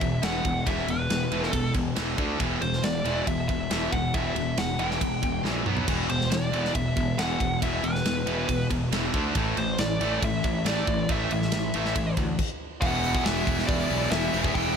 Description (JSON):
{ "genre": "heavy metal", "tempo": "138 BPM", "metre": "4/4", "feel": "straight", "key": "E minor", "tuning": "A4 = 440 Hz", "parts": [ { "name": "nasal lead guitar with a parked wah", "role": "melody", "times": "0.0-14.8 s", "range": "B4 to G5", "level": "-30 LUFS", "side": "equal", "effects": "overdrive" }, { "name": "distorted electric guitar", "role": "riff", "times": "0.0-14.8 s", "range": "E2 to D4", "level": "-31 LUFS", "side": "right 11 dB", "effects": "distortion" }, { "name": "heavy high-gain guitar", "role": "riff", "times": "0.0-14.8 s", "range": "E2 to D4", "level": "-30 LUFS", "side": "left 12 dB", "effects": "distortion" }, { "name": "fuzz picked electric bass", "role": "bass", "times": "0.0-14.8 s", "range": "E1 to D2", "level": "-31 LUFS", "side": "equal", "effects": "overdrive" }, { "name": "tight metal drum kit", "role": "drums", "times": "0.0-14.7 s", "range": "crash cymbal, hi-hat, kick drum, ride cymbal, snare drum, toms", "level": "-30 LUFS", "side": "equal", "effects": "none" }, { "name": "heavy high-gain guitar", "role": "riff", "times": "12.8-14.8 s", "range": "E3 to E4", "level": "-32 LUFS", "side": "equal", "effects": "distortion" } ], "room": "light reverb, small room ambience", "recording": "none", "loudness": "-24 LUFS", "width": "side -7 dB against mid", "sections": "0.0-12.8 A section; 12.8-14.8 B section", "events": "drum fill 5.4-5.9; stop 12.4-12.8", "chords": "0.0 E5; 2.2 D5; 2.4 E5; 5.7 B5; 5.9 E5; 9.1 D5; 9.4 A5; 12.8 Em" }